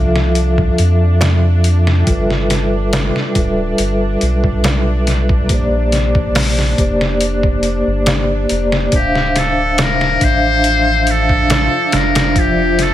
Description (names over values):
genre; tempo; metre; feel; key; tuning
trip hop; 70 BPM; 4/4; straight; D minor; A4 = 440 Hz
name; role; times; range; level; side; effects
vibraphone with soft mallets; accompaniment; 0.0-12.9 s; F3 to F5; -18 LUFS; equal; tremolo, low-pass filter, tape echo
soft dub sub bass; bass; 0.0-12.9 s; D1 to F2; -17 LUFS; equal; none
bowed-like drone; texture; 0.0-12.9 s; D4; -28 LUFS; right 1 dB; built-in reverb
trip hop sampler-style drum kit; drums; 0.2-12.9 s; hi-hat, kick drum, snare drum; -17 LUFS; equal; none
darbuka; percussion; 1.2-11.7 s; none; -26 LUFS; right 3 dB; none
deep dark ambient pad; sustained chords; 10.1-12.9 s; F3 to D4; -22 LUFS; right 1 dB; chorus, built-in reverb
trumpet with metal mute; melody; 9.0-12.9 s; G4 to C5; -16 LUFS; left 2 dB; none
room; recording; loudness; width
light reverb, digital ambience; none; -12 LUFS; side -12 dB against mid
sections
0.0-12.9 A section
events
none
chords
0.0 Fmaj7; 2.1 G13; 5.5 Bb69; 8.9 Dm9; 12.4 F5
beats
0.36 1.21 | 2.07 2.93 3.79 4.64 | 5.50 6.36 7.21 8.07 | 8.93 9.79 10.64 11.50 | 12.36